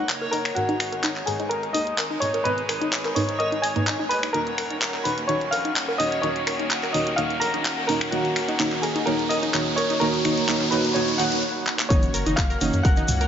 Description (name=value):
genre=progressive house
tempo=127 BPM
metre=4/4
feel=straight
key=Eb minor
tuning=A4 = 440 Hz
part: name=warm baby grand piano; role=melody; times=0.0-13.3 s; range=Gb4 to Bb5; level=-28 LUFS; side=equal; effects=vintage 12-bit sampler grit, low-pass filter, tape echo
part: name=soft synth bell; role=second line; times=0.0-13.3 s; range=Gb5 to Bb6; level=-31 LUFS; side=equal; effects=chorus, sidechain pumping, low-pass filter, dub echo
part: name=rich chamber string section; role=sustained chords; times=0.0-13.3 s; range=Eb3 to Gb4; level=-33 LUFS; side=equal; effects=sidechain pumping
part: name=wide unison pluck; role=arpeggios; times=0.0-13.2 s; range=Eb4 to Bb5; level=-30 LUFS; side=left 1 dB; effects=sidechain pumping, dub echo
part: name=deep mellow chord stab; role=stabs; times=0.0-13.3 s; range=Ab2 to Db5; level=-28 LUFS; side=right 3 dB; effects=chorus, phaser, sidechain pumping, dub echo
part: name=saturated sub bass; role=bass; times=0.0-13.3 s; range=Eb1 to Ab2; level=-34 LUFS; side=equal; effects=sidechain pumping, high-pass filter
part: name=riser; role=sound effects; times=1.9-11.4 s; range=none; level=-32 LUFS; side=equal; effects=none
part: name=backwards swelling texture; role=texture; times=0.0-11.4 s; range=Db5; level=-37 LUFS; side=equal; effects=built-in reverb, sidechain pumping
part: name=pop drum kit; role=drums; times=0.1-13.3 s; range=finger snaps, handclaps, hi-hat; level=-28 LUFS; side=left 1 dB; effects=none
part: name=electronic kick drum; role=drums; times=11.9-12.9 s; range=none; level=-20 LUFS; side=equal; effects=none
part: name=egg shaker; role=percussion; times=11.9-13.3 s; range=none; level=-33 LUFS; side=equal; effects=none
part: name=electronic congas and toms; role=percussion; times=11.9-13.2 s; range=none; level=-31 LUFS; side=right 1 dB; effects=overdrive, sidechain pumping on toms, sidechain pumping on perc
room=wet huge ambient reverb, RT60 4.4 s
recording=nothing above 7.6 kHz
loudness=-21 LUFS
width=side -8 dB against mid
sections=0.0-11.9 A section; 11.9-13.3 B section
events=build-up 0.0-11.9; filter sweep on synth pluck 0.0-11.9; filter sweep on synth stab 0.0-11.9; filter sweep on synth bell 0.0-11.9; riser 1.9-11.4; stop 11.4-11.9; drum fill 11.7; drop 11.9-13.3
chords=0.0 Gb; 0.6 Abmadd9; 4.3 Ebm7; 11.9 Gb